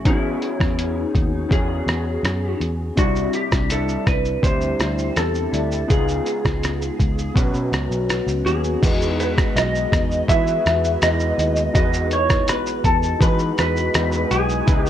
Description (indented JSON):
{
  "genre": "indie pop, bedroom pop",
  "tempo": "82 BPM",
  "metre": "4/4",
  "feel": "straight",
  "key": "E major",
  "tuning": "A4 = 440 Hz",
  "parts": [
    { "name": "electric guitar through a small old amp", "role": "accompaniment", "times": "0.0-14.9 s", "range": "B2 to G#4", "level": "-27 LUFS", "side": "left 4 dB", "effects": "wide subtle chorus, vibrato effect" },
    { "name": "warbly lo-fi synth keys", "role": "accompaniment", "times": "0.0-14.9 s", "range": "G3 to B4", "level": "-27 LUFS", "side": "right 1 dB", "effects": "chorus, cassette tape" },
    { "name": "vintage muted picked electric bass", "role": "bass", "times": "0.0-14.9 s", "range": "B1 to E3", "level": "-24 LUFS", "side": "equal", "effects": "none" },
    { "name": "clean lap steel guitar", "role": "melody", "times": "0.1-14.9 s", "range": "E4 to E5", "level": "-23 LUFS", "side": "equal", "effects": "lush chorus" },
    { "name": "lo-fi sampler-style drum kit", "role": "drums", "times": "0.1-14.9 s", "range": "crash cymbal, hi-hat, kick drum, rim click, shaker", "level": "-21 LUFS", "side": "equal", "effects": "none" }
  ],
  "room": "little or no reverb",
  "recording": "cassette tape",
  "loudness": "-18 LUFS",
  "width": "side -10 dB against mid",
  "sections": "0.0-8.8 A section; 8.8-14.9 B section",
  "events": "none",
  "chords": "0.1 E6; 3.0 Cadd9; 5.9 C#7; 7.4 Bsus2; 8.8 Emaj7"
}